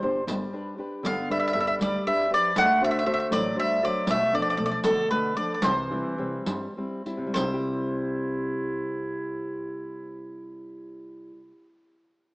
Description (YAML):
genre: italian folk, Italian serenade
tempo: 64-80 BPM (dotted quarters)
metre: 6/8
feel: straight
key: C major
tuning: A4 = 444 Hz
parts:
  - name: mandolin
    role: melody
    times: 0.0-11.5 s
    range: A4 to F#5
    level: -25 LUFS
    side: equal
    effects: none
  - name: warm clarinet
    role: second line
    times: 0.0-11.5 s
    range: D3 to E4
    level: -33 LUFS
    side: right 1 dB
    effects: none
  - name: flamenco guitar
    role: accompaniment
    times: 0.0-11.7 s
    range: B2 to C5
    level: -30 LUFS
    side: left 1 dB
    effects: none
  - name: upright bass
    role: bass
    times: 0.0-11.5 s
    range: G1 to G2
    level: -39 LUFS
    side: equal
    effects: none
  - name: riq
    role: percussion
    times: 0.3-7.7 s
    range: none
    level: -30 LUFS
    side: right 1 dB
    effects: none
room: moderate lush hall reverb, RT60 2.5 s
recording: rough home demo mix, small speaker sound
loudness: -24 LUFS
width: side -24 dB against mid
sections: 0.0-7.4 A section; 7.4-11.1 B section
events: slowing down 4.1-7.4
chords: 0.3 G; 2.6 D7; 4.1 Bm7b5; 5.6 C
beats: 0.27 | 1.03 1.80 | 2.56 3.32 | 4.08 4.84 | 5.63 6.46 | 7.36 8.29 | 9.21 10.13